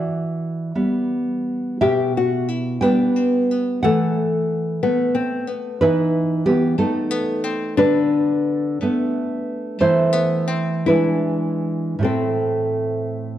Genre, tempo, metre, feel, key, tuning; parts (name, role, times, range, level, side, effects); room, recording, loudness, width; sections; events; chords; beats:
romantic duo for nylon-string guitar and classical guitar; 49-62 BPM (dotted quarters); 12/8; rubato; A minor from 7.8 s; A4 = 440 Hz
nylon-string guitar; accompaniment; 0.0-13.4 s; A2 to G5; -19 LUFS; right 2 dB
nylon-string guitar; melody; 1.8-13.4 s; A3 to G4; -23 LUFS; left 5 dB
moderate recital hall reverb, RT60 1.7 s; dark, warm production; -18 LUFS; side -12 dB against mid
0.0-13.4 A section
0.0 Em; 3.8 B7/E; 7.8 Bm7/D; 9.8 Am/E; 10.9 E7; 12.0 Am
0.76 1.81 2.81 | 3.82 4.82 5.81 6.78 | 7.79 8.81 9.81 10.88 | 12.04 13.23